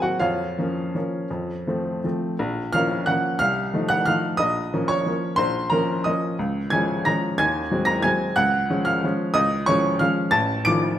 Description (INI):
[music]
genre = classical, piano waltz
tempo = 160-195 BPM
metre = 3/4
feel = rubato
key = Bb minor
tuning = A4 = 441 Hz
[part]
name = clear upright piano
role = solo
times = 0.0-11.0 s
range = A1 to D7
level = -20 LUFS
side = equal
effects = none
[sound]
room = moderate recital hall reverb, RT60 1.4 s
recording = none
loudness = -20 LUFS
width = side -11 dB against mid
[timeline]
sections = 0.0-2.4 A section; 2.4-11.0 B section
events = none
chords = 0.2 Bbm/F; 1.3 F; 2.4 Bbm; 3.4 F7/C; 4.4 Bbm; 6.4 Db; 7.4 Ab7/Eb; 8.4 Db; 10.3 F7/A